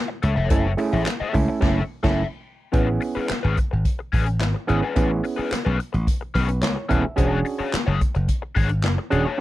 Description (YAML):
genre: funk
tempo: 108 BPM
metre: 4/4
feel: straight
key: unclear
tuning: A4 = 440 Hz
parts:
  - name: crunchy overdriven guitar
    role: accompaniment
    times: 0.1-9.4 s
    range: C#4 to E5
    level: -26 LUFS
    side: left 6 dB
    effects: wah
  - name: slap bass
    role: bass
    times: 0.2-9.2 s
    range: D#1 to C#2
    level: -22 LUFS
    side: equal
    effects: none
  - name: swinging big-band drum kit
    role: drums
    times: 0.2-9.3 s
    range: crash cymbal, handclaps, hi-hat, kick drum, snare drum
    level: -24 LUFS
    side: equal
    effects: none
  - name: overdriven clav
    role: stabs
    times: 0.5-9.4 s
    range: A3 to E5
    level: -24 LUFS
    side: right 4 dB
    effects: none
room: little or no reverb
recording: none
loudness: -20 LUFS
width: side -16 dB against mid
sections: 0.0-2.7 A section; 2.7-9.4 B section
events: band accent 1.6-2.7; clav fill 6.1-7.2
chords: 0.0 F#m7; 2.7 Amaj9; 7.2 E13 (rootless)